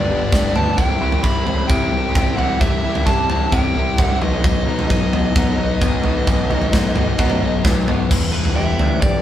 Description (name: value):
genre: quiet-loud alternative rock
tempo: 131 BPM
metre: 4/4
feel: straight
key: unclear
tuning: A4 = 440 Hz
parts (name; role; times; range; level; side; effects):
- fuzz lead guitar; melody; 0.0-9.2 s; B4 to B5; -24 LUFS; right 1 dB; distortion
- electric guitar through a small old amp; arpeggios; 0.0-9.2 s; B2 to G4; -27 LUFS; right 2 dB; none
- overdriven semi-hollow guitar; riff; 0.0-9.2 s; G2 to B4; -22 LUFS; left 5 dB; none
- growling picked electric bass; bass; 0.0-9.2 s; E1 to C3; -24 LUFS; equal; overdrive
- big rock drum kit; drums; 0.3-9.1 s; crash cymbal, kick drum, snare drum, toms; -18 LUFS; equal; none
room: light reverb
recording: band playing live in one room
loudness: -15 LUFS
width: side -11 dB against mid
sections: 0.0-8.1 A section; 8.1-9.2 B section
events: lead electric guitar solo 8.1-9.2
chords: 0.0 G; 0.8 C; 4.2 B; 8.1 Em7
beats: 0.32 | 0.78 1.24 1.70 2.15 | 2.61 3.07 3.53 3.99 | 4.44 4.90 5.36 5.82 | 6.28 6.73 7.19 7.65 | 8.11 8.56 9.02